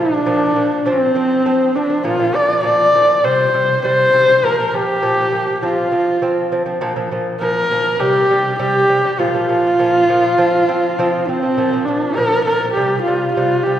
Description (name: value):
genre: mongolian traditional, Mongolian folk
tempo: 101 BPM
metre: 4/4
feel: straight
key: Bb gong mode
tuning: A4 = 440 Hz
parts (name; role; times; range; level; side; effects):
- rich horsehead fiddle; melody; 0.0-13.8 s; C4 to D5; -14 LUFS; equal; none
- lute; arpeggios; 0.0-13.8 s; Bb2 to C4; -20 LUFS; equal; none
room: wet scoring stage reverb, RT60 2.0 s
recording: heard from further back in the room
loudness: -13 LUFS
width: side -10 dB against mid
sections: 0.0-13.8 A section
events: none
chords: 0.0 Bb5; 0.9 F5; 2.1 Bb5; 3.2 C5; 4.4 Bb5; 5.6 F5; 6.8 Bb5; 8.0 C5; 9.2 Bb5; 10.4 F5; 11.6 Bb5; 12.8 C5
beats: 0.27 0.86 1.46 | 2.05 2.65 3.24 3.84 | 4.43 5.03 5.63 6.22 | 6.82 7.41 8.01 8.61 | 9.20 9.79 10.39 10.99 | 11.58 12.18 12.77 13.36